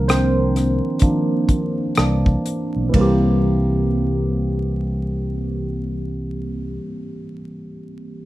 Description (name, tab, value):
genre	R&B, neo-soul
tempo	60-66 BPM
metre	4/4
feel	swing 61% on 16ths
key	unclear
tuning	A4 = 440 Hz
part	barky tine electric piano	accompaniment	0.0-8.3 s	Eb3 to C5	-21 LUFS	right 1 dB	overdrive, phaser, low-pass filter
part	fingered electric bass	bass	0.0-6.8 s	B1 to C2	-21 LUFS	equal	none
part	damped 70s drum kit	drums	0.1-3.2 s	hi-hat, kick drum, ride cymbal, rim click	-18 LUFS	equal	none
room	light reverb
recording	rough home demo mix, vinyl crackle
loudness	-17 LUFS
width	side -16 dB against mid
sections	0.0-2.9 A section; 2.9-6.9 B section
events	slowing down 0.0-2.9; tine electric piano solo 0.0-2.9; filter sweep on tine electric piano 0.0-2.9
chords	0.0 Cm11; 2.0 C7